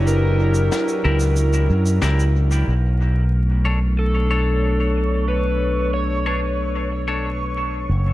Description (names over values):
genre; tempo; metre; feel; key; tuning
ambient dub; 92 BPM; 4/4; straight; B minor; A4 = 442 Hz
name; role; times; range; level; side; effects
overdriven slide guitar; melody; 0.0-7.5 s; A4 to C#5; -26 LUFS; equal; dub echo
airy breathy pad; sustained chords; 0.0-8.1 s; B2 to A#5; -26 LUFS; left 1 dB; chorus
fingered electric bass with an envelope filter; bass; 0.0-8.1 s; F#1 to F#2; -18 LUFS; equal; none
shaker and snare drum; drums; 0.1-2.6 s; none; -31 LUFS; left 3 dB; dub echo
clean electric guitar; stabs; 1.0-7.3 s; D4 to C#5; -29 LUFS; left 3 dB; dub echo
backwards swelling texture; texture; 4.1-8.1 s; C#6; -31 LUFS; right 5 dB; built-in reverb
room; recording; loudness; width
light reverb, small room reverb; vinyl crackle; -17 LUFS; side -16 dB against mid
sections
0.0-2.7 A section; 2.7-8.1 B section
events
none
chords
0.0 F#7b9b13; 2.7 Bm9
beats
| 0.07 0.72 1.37 2.02 | 2.68 3.33 3.98 4.63 | 5.29 5.94 6.59 7.24 | 7.89